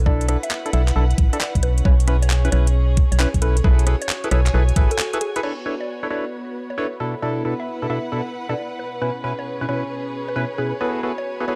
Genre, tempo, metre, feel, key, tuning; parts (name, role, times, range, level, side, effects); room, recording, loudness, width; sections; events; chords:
UK garage, two-step garage; 134 BPM; 4/4; swing 66% on 16ths; B dorian; A4 = 441 Hz
organ-like FM bass; bass; 0.0-4.9 s; A1 to B1; -20 LUFS; equal
warm chamber string section; texture; 0.0-11.6 s; B2 to G#5; -33 LUFS; equal; sidechain pumping
mallet-like synth pluck; melody; 0.1-11.6 s; G#4 to E5; -33 LUFS; equal; chorus, phaser, cassette tape, digital delay
percussive organ stab; stabs; 0.1-11.6 s; B2 to C#5; -28 LUFS; equal; chorus, cassette tape
electronic kick drum; drums; 0.1-4.9 s; -20 LUFS; equal; studio ambience
garage drum kit; drums; 0.2-5.6 s; crash cymbal, handclaps, hi-hat, rim click; -29 LUFS; equal; low-pass filter on hats, studio ambience, low-pass filter on snare, low-pass filter on cymbals
moderate studio reverb, RT60 0.5 s; dark, warm production; -21 LUFS; mono
0.0-5.4 A section; 5.4-11.6 B section
filter sweep on synth stab 0.0-5.4; break 5.0-5.4
0.0 E7sus4/B; 1.6 C#m7/B; 3.6 F#m11/B; 5.4 Bm11; 7.0 E7sus4/B; 8.8 C#m7/B; 10.8 F#m11/B